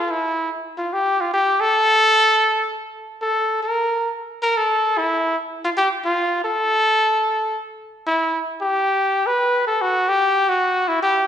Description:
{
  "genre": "jazz",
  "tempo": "148 BPM",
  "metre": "3/4",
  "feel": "swing 66% on 8ths",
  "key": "unclear",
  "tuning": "A4 = 437 Hz",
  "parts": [
    { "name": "clear trumpet", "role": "solo", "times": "0.0-11.3 s", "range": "E4 to B4", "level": "-17 LUFS", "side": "equal", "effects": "none" }
  ],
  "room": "wet recital hall reverb, RT60 1.7 s",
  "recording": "recorded in a church or concert hall",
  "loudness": "-17 LUFS",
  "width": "side -9 dB against mid",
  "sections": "0.0-11.3 A section",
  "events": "none",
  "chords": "none",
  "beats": "| 0.10 0.50 0.90 | 1.31 1.71 2.12 | 2.52 2.92 3.33 | 3.73 4.14 4.54 | 4.95 5.35 5.75 | 6.16 6.56 6.97 | 7.37 7.77 8.18 | 8.58 8.99 9.39 | 9.79 10.20 10.60 | 11.01"
}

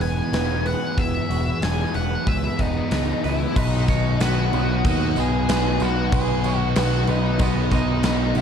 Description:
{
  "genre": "rock, shoegaze and dream pop",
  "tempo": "93 BPM",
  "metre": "4/4",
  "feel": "straight",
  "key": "unclear",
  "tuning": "A4 = 440 Hz",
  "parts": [
    { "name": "octave-fuzz lead guitar", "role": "melody", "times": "0.0-8.4 s", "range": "B3 to G#5", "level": "-28 LUFS", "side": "left 3 dB", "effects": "distortion, digital delay" },
    { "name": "soft string machine", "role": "sustained chords", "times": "0.0-8.4 s", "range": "E3 to D#6", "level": "-33 LUFS", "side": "equal", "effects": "ensemble chorus" },
    { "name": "twangy electric guitar", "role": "arpeggios", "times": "0.0-8.4 s", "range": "F#4 to D#5", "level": "-32 LUFS", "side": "right 10 dB", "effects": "lush chorus, digital delay" },
    { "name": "mellow electric guitar", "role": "riff", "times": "0.0-8.4 s", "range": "B2 to D#4", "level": "-28 LUFS", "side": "right 12 dB", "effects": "reverse reverb" },
    { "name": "thick fuzz guitar", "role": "riff", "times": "0.0-8.4 s", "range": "E2 to F#4", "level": "-28 LUFS", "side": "left 10 dB", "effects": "distortion, lush chorus" },
    { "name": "growling picked electric bass", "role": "bass", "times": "0.0-8.4 s", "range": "E1 to D#2", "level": "-24 LUFS", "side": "equal", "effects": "overdrive" },
    { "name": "huge arena drum kit", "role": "drums", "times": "0.0-8.4 s", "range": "crash cymbal, hi-hat, kick drum, snare drum", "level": "-25 LUFS", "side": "equal", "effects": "none" },
    { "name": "tambourine", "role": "percussion", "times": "3.9-8.4 s", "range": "none", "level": "-42 LUFS", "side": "right 9 dB", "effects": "none" }
  ],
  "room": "small room reverb",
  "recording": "dark, warm production",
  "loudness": "-19 LUFS",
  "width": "side -7 dB against mid",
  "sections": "0.0-3.6 A section; 3.6-8.4 A section",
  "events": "none",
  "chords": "0.0 Emaj7; 3.6 B",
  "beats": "0.33 | 0.98 1.63 2.27 2.92 | 3.56 4.20 4.85 5.49 | 6.13 6.76 7.40 8.04"
}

